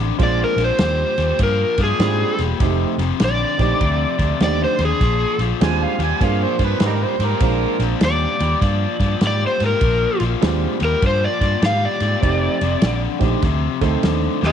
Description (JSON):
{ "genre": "electric blues shuffle", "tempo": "100 BPM", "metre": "4/4", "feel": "swing 64% on 8ths", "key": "unclear", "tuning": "A4 = 441 Hz", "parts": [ { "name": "biting overdriven guitar", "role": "riff", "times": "0.0-14.5 s", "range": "F2 to G3", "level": "-24 LUFS", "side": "left 13 dB", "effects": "none" }, { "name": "fingered electric bass", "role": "bass", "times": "0.0-14.5 s", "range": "E1 to Ab2", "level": "-21 LUFS", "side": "equal", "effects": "tube saturation" }, { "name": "overdriven slide guitar", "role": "melody", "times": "0.2-14.5 s", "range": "Ab4 to F5", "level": "-21 LUFS", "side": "equal", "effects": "none" }, { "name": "warm upright piano", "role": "accompaniment", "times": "0.2-14.5 s", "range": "Ab3 to A4", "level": "-25 LUFS", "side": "right 13 dB", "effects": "none" }, { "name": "warm soul drum kit", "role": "drums", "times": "0.2-14.5 s", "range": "kick drum, ride cymbal, snare drum", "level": "-22 LUFS", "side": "equal", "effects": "none" }, { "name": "overdriven harmonica", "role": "second line", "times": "5.6-7.8 s", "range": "Eb4 to Ab5", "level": "-24 LUFS", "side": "right 8 dB", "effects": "none" } ], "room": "light reverb, small room ambience", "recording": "1960s-style stereo with parts hard left and right", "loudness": "-16 LUFS", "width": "side -8 dB against mid", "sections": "0.0-14.5 A section", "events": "drum fill 14.3", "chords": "0.2 Bb9; 2.6 F9; 5.0 Bb9; 12.2 F9" }